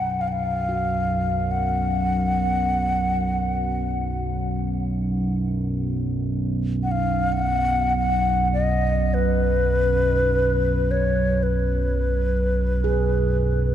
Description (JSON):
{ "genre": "world meditative, free-time meditation music", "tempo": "free time", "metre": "none", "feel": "none", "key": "unclear", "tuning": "A4 = 440 Hz", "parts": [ { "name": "hollow low xiao", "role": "melody", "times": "0.0-13.7 s", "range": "B4 to F#5", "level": "-23 LUFS", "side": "left 1 dB", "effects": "diffuse ambient delay" }, { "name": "analog drone", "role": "drone", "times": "0.0-13.7 s", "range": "B1 to F#2", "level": "-22 LUFS", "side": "right 1 dB", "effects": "chorus" }, { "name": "handpan", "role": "texture", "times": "0.7-13.7 s", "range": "F#4 to G#4", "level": "-30 LUFS", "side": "right 6 dB", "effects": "none" } ], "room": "moderate huge ambient reverb, RT60 3.9 s", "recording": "dark, warm production", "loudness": "-20 LUFS", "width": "side -10 dB against mid", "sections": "0.0-13.7 A section", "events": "none", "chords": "none" }